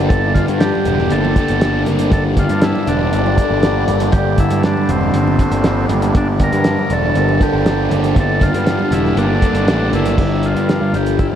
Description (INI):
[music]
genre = psychedelic rock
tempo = 119 BPM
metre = 4/4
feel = straight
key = G dorian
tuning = A4 = 440 Hz
[part]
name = pedal harmonium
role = sustained chords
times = 0.0-11.4 s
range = G4 to Bb5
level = -27 LUFS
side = right 4 dB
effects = none
[part]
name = fuzz guitar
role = riff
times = 0.0-11.4 s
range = G2 to A4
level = -18 LUFS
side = left 1 dB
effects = distortion, phaser, analog delay
[part]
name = fuzz picked electric bass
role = bass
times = 0.0-11.4 s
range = E1 to G2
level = -18 LUFS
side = equal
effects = overdrive
[part]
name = hand-pumped harmonium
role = drone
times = 0.0-10.2 s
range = G2 to D3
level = -27 LUFS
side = left 3 dB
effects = none
[part]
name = combo organ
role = melody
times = 0.1-11.3 s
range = C4 to Bb4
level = -22 LUFS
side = equal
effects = spring reverb, analog delay
[part]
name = cloth-damped thuddy drum kit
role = drums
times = 0.1-11.3 s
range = crash cymbal, hi-hat, kick drum, snare drum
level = -19 LUFS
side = equal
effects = analog delay
[part]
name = congas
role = percussion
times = 0.4-10.2 s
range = none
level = -30 LUFS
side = right 2 dB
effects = none
[sound]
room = light reverb, studio ambience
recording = echo-heavy mix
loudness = -13 LUFS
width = side -9 dB against mid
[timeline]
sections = 0.0-10.2 A section; 10.2-11.4 B section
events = none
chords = 0.0 Gmadd9; 10.2 Gm